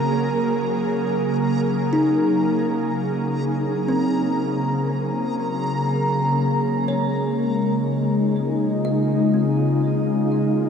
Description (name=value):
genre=ambient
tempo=61 BPM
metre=4/4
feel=straight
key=Db major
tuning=A4 = 440 Hz
part: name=ethereal airy pad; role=sustained chords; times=0.0-10.7 s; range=Db3 to Bb4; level=-20 LUFS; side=equal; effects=ensemble chorus, built-in reverb, shimmer reverb
part: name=backwards swelling texture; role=texture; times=0.0-6.4 s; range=Bb5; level=-30 LUFS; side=equal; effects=built-in reverb, shimmer reverb
part: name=kalimba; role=arpeggios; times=1.9-10.7 s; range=C4 to Eb5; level=-26 LUFS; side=left 1 dB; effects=ping-pong delay, shimmer reverb
room=wet huge ambient reverb, RT60 8.1 s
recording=cassette tape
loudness=-19 LUFS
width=side -7 dB against mid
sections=0.0-6.4 A section; 6.4-10.7 B section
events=none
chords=0.0 Gb/Db; 6.4 Db